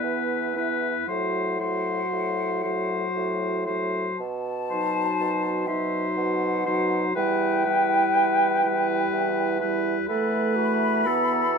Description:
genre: classical, slow romantic movement for wind quintet.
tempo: 51-63 BPM.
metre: 3/4.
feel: rubato.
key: E minor.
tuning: A4 = 440 Hz.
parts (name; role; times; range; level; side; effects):
mellow silver concert flute; melody; 0.0-11.6 s; E5 to B5; -27 LUFS; left 2 dB; none.
clear oboe; second line; 0.0-11.6 s; A4 to C5; -28 LUFS; left 5 dB; none.
dark French horn; accompaniment; 0.0-11.4 s; F#3 to B3; -30 LUFS; left 1 dB; none.
mellow clarinet; accompaniment; 0.0-11.6 s; D#4 to A4; -30 LUFS; right 7 dB; none.
mellow bassoon; bass; 0.0-11.6 s; E2 to B2; -29 LUFS; right 4 dB; none.
room: moderate studio ambience, RT60 0.5 s.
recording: minimal, uncompressed stereo recording.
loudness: -22 LUFS.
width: side -5 dB against mid.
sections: 0.0-11.6 A section.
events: none.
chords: 0.0 E5; 1.1 F#dim/A; 4.2 B7b9; 7.2 Em; 10.1 B5/E.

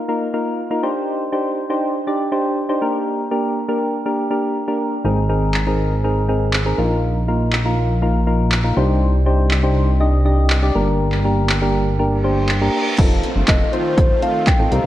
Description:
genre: dance-pop.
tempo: 121 BPM.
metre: 4/4.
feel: straight.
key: unclear.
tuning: A4 = 440 Hz.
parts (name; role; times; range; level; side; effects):
soft electric-piano-like synth keys; accompaniment; 0.1-14.9 s; Bb3 to Eb5; -19 LUFS; equal; chorus, sidechain pumping.
chorused synth bass; bass; 5.0-14.9 s; F1 to C2; -18 LUFS; equal; sidechain pumping.
punchy analog drum machine; drums; 5.5-14.8 s; crash cymbal, handclaps, hi-hat, kick drum; -19 LUFS; equal; none.
reverse cymbal and downlifter; sound effects; 12.2-14.9 s; none; -28 LUFS; right 2 dB; none.
supersaw pad; sustained chords; 13.0-14.9 s; Eb3 to G4; -25 LUFS; right 1 dB; sidechain pumping.
hollow clarinet-like synth lead; melody; 13.5-14.9 s; C5 to G5; -21 LUFS; equal; chorus.
room: moderate lush hall reverb, RT60 1.9 s.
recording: worn, warbling old tape, cassette tape, warbly pitch drift.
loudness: -16 LUFS.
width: side -13 dB against mid.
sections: 0.0-13.0 A section; 13.0-14.9 B section.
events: kick muted 11.0-13.0; reverse cymbal 12.2-13.0.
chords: 0.0 Bbsus4; 0.8 Cmadd9; 2.8 Gm; 5.0 Abadd9; 6.8 Bbsus4; 8.8 Cmadd9; 10.8 Gm; 13.0 F7.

